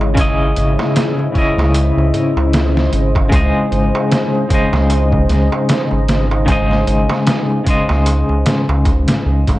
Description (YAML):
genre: trip hop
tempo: 76 BPM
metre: 4/4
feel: swing 57% on 16ths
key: unclear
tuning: A4 = 440 Hz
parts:
  - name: electric guitar at the edge of break-up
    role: accompaniment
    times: 0.0-9.6 s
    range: C#3 to D#5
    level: -17 LUFS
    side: left 1 dB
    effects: tremolo, vintage 12-bit sampler grit, tape echo
  - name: deep dark ambient pad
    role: sustained chords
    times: 0.0-9.6 s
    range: G#3 to D#5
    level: -21 LUFS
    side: equal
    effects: chorus, built-in reverb
  - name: round analog bass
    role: bass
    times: 0.0-9.6 s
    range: G#1 to C#2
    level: -16 LUFS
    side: equal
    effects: none
  - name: darbuka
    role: percussion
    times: 0.0-9.6 s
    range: none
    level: -27 LUFS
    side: right 2 dB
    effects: none
  - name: trip hop sampler-style drum kit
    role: drums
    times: 0.2-9.6 s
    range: hi-hat, kick drum, snare drum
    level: -18 LUFS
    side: equal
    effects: overdrive
room: little or no reverb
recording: worn, warbling old tape, cassette tape, warbly pitch drift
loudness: -12 LUFS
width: side -16 dB against mid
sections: 0.0-9.6 A section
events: none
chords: 0.0 C#madd9; 3.3 G#